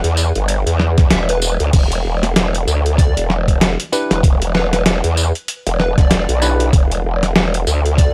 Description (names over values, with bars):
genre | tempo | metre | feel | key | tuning
glitch hop | 96 BPM | 4/4 | swing 58% on 16ths | E minor | A4 = 440 Hz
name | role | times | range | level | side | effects
growl bass | bass | 0.0-8.1 s | E1 to E2 | -19 LUFS | equal | chorus, overdrive
boom bap sampler-style drum kit | drums | 0.0-8.1 s | crash cymbal, hi-hat, snare drum, tambourine | -20 LUFS | equal | none
electronic kick drum | drums | 1.0-8.1 s | none | -15 LUFS | equal | none
plucky unison lead | melody | 1.1-8.1 s | B4 to E5 | -27 LUFS | equal | tape echo
bell-like tine electric piano | stabs | 3.9-6.7 s | D4 to B4 | -24 LUFS | equal | sidechain pumping, tape echo
room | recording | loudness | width
little or no reverb | dry, gritty hardware recording, vinyl crackle | -16 LUFS | mono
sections
0.0-8.1 A section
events
none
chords
0.0 E7(no3)